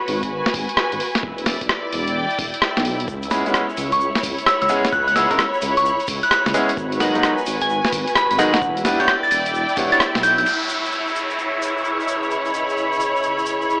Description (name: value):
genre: UK garage, two-step garage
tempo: 130 BPM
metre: 4/4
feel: swing 66% on 16ths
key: unclear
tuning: A4 = 438 Hz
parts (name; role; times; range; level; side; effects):
- rich symphonic string section; texture; 0.0-13.8 s; E4 to B5; -22 LUFS; equal; sidechain pumping
- dark detuned saw bass; bass; 0.1-10.4 s; E1 to D#2; -27 LUFS; equal; sidechain pumping
- boom bap sampler-style drum kit; drums; 0.1-10.6 s; crash cymbal, hi-hat, rim click, snare drum; -22 LUFS; equal; none
- electronic kick drum; drums; 0.2-9.9 s; none; -35 LUFS; equal; none
- tube shaker; percussion; 3.1-13.8 s; none; -38 LUFS; equal; none
- soft synth bell; melody; 3.3-10.4 s; F#5 to A6; -20 LUFS; equal; chorus, phaser
- bright grand piano; stabs; 3.3-10.0 s; D#3 to C#5; -22 LUFS; equal; vintage 12-bit sampler grit, tape echo
- ethereal airy pad; sustained chords; 11.1-13.8 s; C#3 to D#5; -28 LUFS; left 1 dB; ensemble chorus, built-in reverb, phaser, sidechain pumping
- downlifter; sound effects; 10.5-13.8 s; none; -28 LUFS; equal; none
room: moderate lush hall reverb, RT60 2.6 s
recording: AM radio sound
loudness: -17 LUFS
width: side -26 dB against mid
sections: 0.0-10.5 A section; 10.5-13.8 B section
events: band accent 10.0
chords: 0.0 G#m7; 1.2 Em7; 3.1 C#m7; 6.8 G#m7; 8.6 Em7; 10.5 C#m7